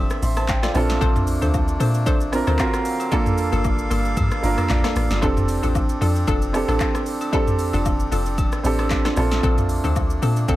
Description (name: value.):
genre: amapiano.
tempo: 114 BPM.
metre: 4/4.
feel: swing 55% on 16ths.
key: F major.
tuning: A4 = 441 Hz.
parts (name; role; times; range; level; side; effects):
dark baby grand piano; accompaniment; 0.0-10.6 s; Bb3 to C6; -24 LUFS; right 3 dB; none.
accordion; sustained chords; 0.0-10.6 s; D3 to E#5; -31 LUFS; left 1 dB; sidechain pumping.
deep log drum bass; bass; 0.0-10.6 s; F1 to Bb2; -22 LUFS; equal; none.
deep house drum kit; drums; 0.1-10.6 s; handclaps, hi-hat, kick drum, rim click, shaker, snare drum, toms; -23 LUFS; equal; none.
agogo bells and woodblock; percussion; 0.4-10.6 s; none; -34 LUFS; left 3 dB; none.
hollow square pluck; stabs; 0.6-10.6 s; Bb3 to D5; -28 LUFS; left 2 dB; chorus, digital delay.
room: digital ambience.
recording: none.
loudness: -18 LUFS.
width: side -15 dB against mid.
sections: 0.0-10.6 A section.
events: none.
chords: 0.0 F6; 0.8 Bbmaj9; 2.6 D7alt; 3.1 Gm9; 5.2 F6; 9.2 Bbmaj9.